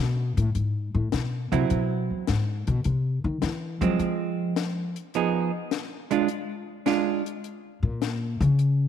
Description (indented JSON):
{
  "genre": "jazz, small-group swing and bop",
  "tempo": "105 BPM",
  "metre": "4/4",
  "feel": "swing 69% on 8ths",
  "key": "unclear",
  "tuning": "A4 = 440 Hz",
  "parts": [
    { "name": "upright bass", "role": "bass", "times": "0.0-8.9 s", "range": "E2 to Gb3", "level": "-24 LUFS", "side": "left 2 dB", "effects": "none" },
    { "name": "compact cocktail drum kit", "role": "drums", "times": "0.4-8.8 s", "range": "hi-hat, snare drum", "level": "-32 LUFS", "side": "left 10 dB", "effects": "none" },
    { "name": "hollow-body jazz guitar", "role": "accompaniment", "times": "1.5-7.2 s", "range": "F3 to Ab4", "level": "-26 LUFS", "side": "right 8 dB", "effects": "none" }
  ],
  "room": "moderate echo chamber reverb, RT60 1.8 s, small room ambience",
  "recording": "1960s-style stereo with parts hard left and right",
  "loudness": "-24 LUFS",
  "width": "side -9 dB against mid",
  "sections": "0.0-7.4 A section; 7.4-8.9 A section",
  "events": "upright bass solo 0.0-8.9",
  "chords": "0.0 Asus2; 0.6 Ab7alt; 2.8 Csus4; 5.1 Fm7b5; 6.3 Ddim/Ab; 7.4 Eb7(no3) (rootless)"
}